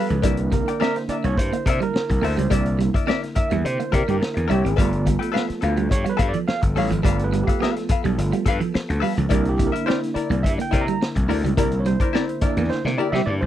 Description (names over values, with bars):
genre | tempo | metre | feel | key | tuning
funk | 106 BPM | 4/4 | straight | unclear | A4 = 436 Hz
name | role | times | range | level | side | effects
hollow-body jazz guitar | accompaniment | 0.0-13.5 s | E4 to G5 | -27 LUFS | left 9 dB | wah
mellow tonewheel organ | sustained chords | 0.0-13.5 s | D3 to A4 | -32 LUFS | left 2 dB | slow rotary speaker
clean electric guitar | riff | 0.0-13.3 s | F3 to C4 | -27 LUFS | right 8 dB | none
overdriven tine electric piano | stabs | 0.0-13.5 s | A3 to Bb5 | -26 LUFS | right 4 dB | medium tremolo
gritty slap bass | bass | 0.1-13.5 s | G1 to C3 | -23 LUFS | left 1 dB | overdrive
vintage drum kit | drums | 0.1-13.3 s | hi-hat, kick drum, snare drum | -24 LUFS | left 1 dB | none
breathy trombone | second line | 3.9-4.9, 13.0-13.2 s | G4 | -26 LUFS | left 7 dB | none
room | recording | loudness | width
light reverb | dry, close 1970s-style studio recording | -19 LUFS | side -12 dB against mid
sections
0.0-13.5 A section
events
tine electric piano solo 0.0-13.5; band accent 2.5-4.8, 11.6-13.5; drum fill 12.7-13.5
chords
0.2 C9; 4.8 G9; 9.3 C9